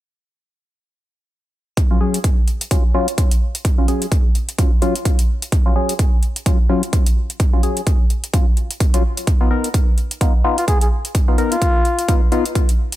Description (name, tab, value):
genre	bass house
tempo	128 BPM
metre	4/4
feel	swing 58% on 16ths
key	unclear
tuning	A4 = 439 Hz
part	electronic hi-hat	drums	1.8-13.0 s	none	-26 LUFS	equal	none
part	electronic kick drum	drums	1.8-12.7 s	none	-15 LUFS	equal	none
part	percussive organ stab	stabs	1.9-12.4 s	Gb3 to Bb4	-22 LUFS	left 2 dB	chorus, phaser, sidechain pumping, digital delay
part	trumpet with bucket mute	melody	10.6-12.2 s	F4 to Ab4	-21 LUFS	left 1 dB	digital delay
room	digital ambience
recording	none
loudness	-15 LUFS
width	side -15 dB against mid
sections	1.8-13.0 A section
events	filter sweep on synth stab 1.8-13.0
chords	1.8 Gbsus2; 9.3 Bbsus4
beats	| 1.77 2.24 2.71 3.18 | 3.65 4.12 4.59 5.05 | 5.52 5.99 6.46 6.93 | 7.40 7.87 8.34 8.80 | 9.27 9.74 10.21 10.68 | 11.15 11.62 12.09 12.55